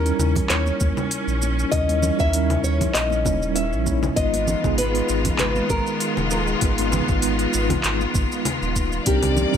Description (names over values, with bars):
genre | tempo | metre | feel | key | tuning
sunset chillout | 98 BPM | 4/4 | swing 54% on 16ths | unclear | A4 = 440 Hz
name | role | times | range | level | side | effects
nylon-string guitar | melody | 0.0-9.6 s | G4 to Fb5 | -26 LUFS | equal | tape echo
mellow tine electric piano | accompaniment | 0.0-9.6 s | G3 to Db5 | -25 LUFS | moving between left 4 dB and right 5 dB | medium stereo tremolo, auto-pan
bright studio string section | sustained chords | 0.0-9.6 s | C3 to D5 | -27 LUFS | left 2 dB | vintage 12-bit sampler grit
warm sub bass | bass | 0.0-9.6 s | Eb1 to Eb2 | -24 LUFS | equal | tube saturation
smooth R&B drum kit | drums | 0.1-9.6 s | cabasa, congas, handclaps, hi-hat | -27 LUFS | left 1 dB | none
electronic kick drum | drums | 0.4-9.6 s | none | -25 LUFS | equal | none
congas | percussion | 0.4-9.5 s | none | -32 LUFS | right 3 dB | none
room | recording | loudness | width
light reverb, small room ambience | none | -19 LUFS | side -8 dB against mid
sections
0.0-9.6 A section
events
none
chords
0.0 Eb7b9; 4.2 Abm6; 9.1 Cm9